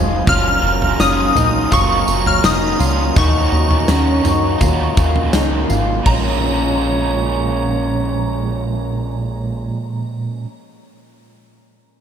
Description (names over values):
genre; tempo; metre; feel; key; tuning
dream pop; 83 BPM; 4/4; straight; Bb minor; A4 = 440 Hz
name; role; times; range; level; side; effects
crunchy overdriven guitar; accompaniment; 0.0-10.5 s; Ab2 to Ab4; -22 LUFS; right 5 dB; harmonic tremolo, analog chorus
dark brass ensemble; sustained chords; 0.0-9.7 s; Gb3 to Bb5; -26 LUFS; right 2 dB; none
electric guitar through a small old amp; arpeggios; 0.0-10.5 s; Bb3 to Bb4; -22 LUFS; left 4 dB; analog chorus, ping-pong delay
plucky analog bass; bass; 0.0-9.7 s; F1 to Gb2; -20 LUFS; equal; none
shimmering bell with halo; melody; 0.3-10.4 s; Bb5 to F6; -21 LUFS; left 2 dB; ensemble chorus, phaser, ping-pong delay
huge arena drum kit; drums; 0.3-6.2 s; crash cymbal, kick drum, snare drum, tambourine, toms; -19 LUFS; equal; none
room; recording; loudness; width
light reverb, small room reverb; none; -14 LUFS; side -8 dB against mid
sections
0.0-6.1 A section; 6.1-8.9 B section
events
none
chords
0.3 Gbmaj7; 3.2 Ebm7; 6.1 Bbm7